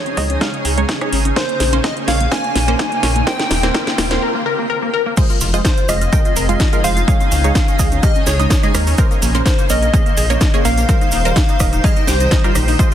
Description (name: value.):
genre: progressive house.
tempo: 126 BPM.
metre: 4/4.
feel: straight.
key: unclear.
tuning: A4 = 438 Hz.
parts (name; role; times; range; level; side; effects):
plucky unison lead; melody; 0.0-12.6 s; C5 to Ab5; -22 LUFS; equal; ping-pong delay.
soft synth bell; second line; 0.0-12.5 s; C5 to Ab5; -30 LUFS; left 3 dB; none.
shimmering ambient pad; sustained chords; 0.0-12.9 s; Db3 to C5; -25 LUFS; equal; chorus, built-in reverb, sidechain pumping.
riser; sound effects; 0.7-4.2 s; none; -30 LUFS; right 1 dB; none.
tight sequenced synth; arpeggios; 0.1-12.9 s; Bb3 to C5; -24 LUFS; left 3 dB; chorus, cassette tape, sidechain pumping, tape echo.
house drum kit; drums; 0.1-12.9 s; crash cymbal, hi-hat, rim click, snare drum; -22 LUFS; equal; overdrive.
wide unison pluck; stabs; 0.2-12.9 s; G3 to G5; -23 LUFS; right 5 dB; sidechain pumping, tape echo.
dark detuned saw bass; bass; 0.2-12.7 s; Eb1 to Eb2; -18 LUFS; equal; sidechain pumping.
electronic kick drum; drums; 0.2-12.9 s; none; -16 LUFS; equal; overdrive, high-pass filter on kick, high-pass filter on room.
cabasa; percussion; 5.2-12.9 s; none; -27 LUFS; right 5 dB; none.
room: light reverb.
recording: dense, heavily limited modern master.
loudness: -13 LUFS.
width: side -10 dB against mid.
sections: 0.0-5.2 A section; 5.2-12.9 B section.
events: build-up 0.0-5.2; drum fill 0.0-4.2; filter sweep on synth arpeggio sound 0.0-5.2; drop 5.2-12.9.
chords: 0.0 Dbsus2; 1.4 Bbmadd9; 3.3 Eb6; 5.2 Fm7; 7.1 Dbsus2; 9.0 Bbmadd9; 10.9 Eb6.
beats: 0.41 0.89 | 1.36 1.84 2.32 2.79 | 3.27 3.75 4.22 4.70 | 5.17 5.65 6.13 6.60 | 7.08 7.55 8.03 8.51 | 8.98 9.46 9.94 10.41 | 10.89 11.36 11.84 12.32 | 12.79.